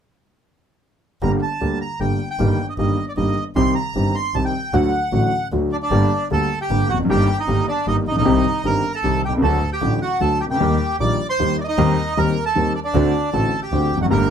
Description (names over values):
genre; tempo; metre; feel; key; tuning
tango; 154 BPM; 3/4; rubato; G harmonic minor; A4 = 438 Hz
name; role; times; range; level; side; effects
bandoneon; melody; 1.2-14.3 s; D4 to D6; -22 LUFS; right 2 dB; none
clear grand piano; accompaniment; 1.2-14.3 s; G1 to G4; -20 LUFS; left 1 dB; none
clear double bass; bass; 1.2-14.3 s; F1 to Eb2; -23 LUFS; right 1 dB; none
room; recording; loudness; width
light reverb; close, detailed microphones; -17 LUFS; side -8 dB against mid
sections
1.2-5.9 A section; 5.9-14.3 B section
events
none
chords
1.2 Gm; 2.4 Eb/G; 3.6 Cm; 4.7 D; 5.9 Gm; 7.1 Eb/G; 8.3 Cm; 9.4 D; 10.6 Eb; 11.8 Cm/Eb; 12.9 D7